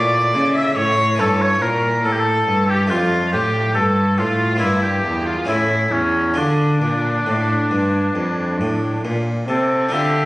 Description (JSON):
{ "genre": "classical, baroque-style sonata movement with continuo", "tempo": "69 BPM", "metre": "4/4", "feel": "rubato", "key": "D minor", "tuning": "A4 = 442 Hz", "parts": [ { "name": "warm oboe", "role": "melody", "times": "0.0-10.3 s", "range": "C#4 to E5", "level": "-20 LUFS", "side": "left 1 dB", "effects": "none" }, { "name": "rich violin", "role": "second line", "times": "0.0-10.3 s", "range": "C4 to E5", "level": "-24 LUFS", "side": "right 1 dB", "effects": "none" }, { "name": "harpsichord", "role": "accompaniment", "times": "0.0-10.3 s", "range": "E2 to F4", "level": "-24 LUFS", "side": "equal", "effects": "none" }, { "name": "rich cello", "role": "bass", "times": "0.0-10.3 s", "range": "E2 to D3", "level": "-20 LUFS", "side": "equal", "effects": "none" } ], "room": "moderate recital hall reverb, RT60 1.5 s", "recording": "recorded on a phone in the room, studio reverb, compression", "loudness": "-16 LUFS", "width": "side -18 dB against mid", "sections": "0.0-9.9 A section", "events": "none", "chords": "0.0 A; 1.2 A7/G; 2.9 Dm/F; 4.6 Em7b5/G; 5.5 A; 6.4 Dm", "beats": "0.35 1.19 2.05 | 2.91 3.76 4.62 5.48 | 6.36 7.26 8.16 9.04 | 9.92" }